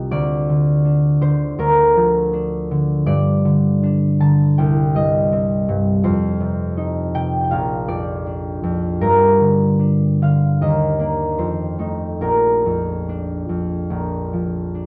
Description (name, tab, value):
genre	classical, solo harp piece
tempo	69-84 BPM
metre	4/4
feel	rubato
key	Bb major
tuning	A4 = 440 Hz
part	concert harp	solo	0.0-14.9 s	Bb1 to A5	-18 LUFS	equal	none
room	moderate studio reverb, RT60 0.9 s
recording	dark, warm production, nothing above 7.5 kHz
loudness	-18 LUFS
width	mono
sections	0.0-14.9 A section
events	none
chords	0.1 Bb/D; 3.1 Gm; 4.6 Cm7; 6.0 F5; 7.5 Bb; 9.0 Gm; 10.6 Eb5; 11.4 F7; 12.2 Bb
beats	| 0.12 0.85 1.59 2.32 | 3.07 3.82 4.58 5.31 | 6.04 6.77 7.51 8.26 | 9.01 9.80 10.60 11.38 | 12.22 13.08 13.91 14.74